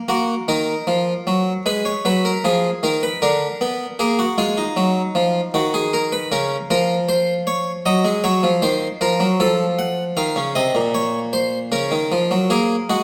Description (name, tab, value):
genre	classical, baroque-style two-part invention for harpsichord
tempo	77 BPM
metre	4/4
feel	straight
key	Eb minor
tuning	A4 = 439 Hz
part	harpsichord	solo	0.1-13.0 s	Bb2 to Gb5	-20 LUFS	equal	none
room	wet recital hall reverb, RT60 1.6 s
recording	none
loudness	-20 LUFS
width	mono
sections	0.1-12.5 A section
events	none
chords	0.1 Ebm; 1.7 Abm; 3.2 Bb7/D; 4.8 Ebm; 6.3 Bbm/Db; 7.8 Ebm; 9.4 F7; 10.9 Bbm; 12.5 Gb